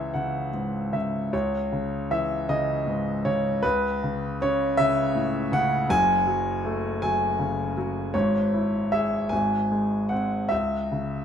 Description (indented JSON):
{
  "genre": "classical, lyrical solo piano",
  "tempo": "52 BPM (dotted quarters)",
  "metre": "6/8",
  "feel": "uneven beats, rubato",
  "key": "C# minor",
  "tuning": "A4 = 440 Hz",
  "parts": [
    { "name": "warm grand piano", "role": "solo", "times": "0.0-11.2 s", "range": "F#1 to G#5", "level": "-23 LUFS", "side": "equal", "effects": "none" }
  ],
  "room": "light reverb",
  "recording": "none",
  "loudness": "-23 LUFS",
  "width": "side -8 dB against mid",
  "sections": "0.0-1.3 A section; 1.3-11.2 A section",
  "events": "none",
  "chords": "0.0 C#m; 3.6 Aadd9/C#; 5.9 F#madd9; 8.1 C#m/G#; 9.3 G#; 10.5 C#m"
}